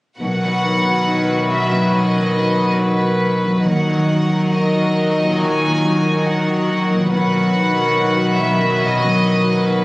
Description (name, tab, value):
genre	cinematic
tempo	70 BPM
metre	4/4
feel	rubato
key	B major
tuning	A4 = 439 Hz
part	clear studio violin section	melody	0.2-9.8 s	B4 to G#5	-22 LUFS	equal	none
part	warm studio violin section	second line	0.2-9.8 s	F#4 to B4	-21 LUFS	left 1 dB	none
part	felt-muted upright piano	accompaniment	0.2-9.8 s	B1 to F#4	-22 LUFS	equal	none
part	rich studio viola section	accompaniment	0.2-9.8 s	D#3 to D#4	-22 LUFS	equal	none
part	concert harp	arpeggios	0.2-9.8 s	B2 to F#4	-21 LUFS	left 1 dB	none
part	warm studio cello section	bass	0.2-9.8 s	B2 to D#3	-25 LUFS	right 1 dB	none
room	wet scoring stage reverb, RT60 1.9 s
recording	recorded on a phone in the room, studio ambience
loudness	-14 LUFS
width	side -21 dB against mid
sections	0.2-9.8 A section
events	none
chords	0.2 B; 3.7 D#m; 7.1 B